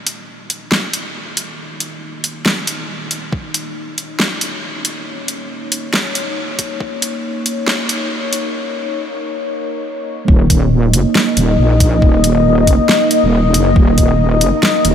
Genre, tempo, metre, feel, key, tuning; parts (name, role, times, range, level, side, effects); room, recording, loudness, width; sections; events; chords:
deep dubstep; 138 BPM; 4/4; swing 59% on 16ths, half-time; A4 = 440 Hz
deep dark ambient pad; sustained chords; 0.0-14.9 s; Bb3 to Eb5; -18 LUFS; left 1 dB; chorus, built-in reverb
deep house drum kit; drums; 0.1-14.9 s; hi-hat, snare drum; -19 LUFS; equal; overdrive, studio reverb
electronic kick drum; drums; 3.3-3.4, 6.6-6.9, 10.3-14.1 s; -13 LUFS; equal; overdrive, studio reverb
wobble bass; bass; 10.3-14.9 s; Eb1 to Bb1; -14 LUFS; equal; chorus
moderate huge ambient reverb, RT60 9.7 s; dreamy mix soaked in reverb, high-pass filter; -13 LUFS; side -8 dB against mid
0.0-10.3 A section; 10.3-14.9 B section
build-up 0.0-10.3; filter sweep on ambient pad 0.0-10.3; filter sweep 0.0-10.3; break 8.5-10.3; drop 10.3-14.9
0.0 Eb5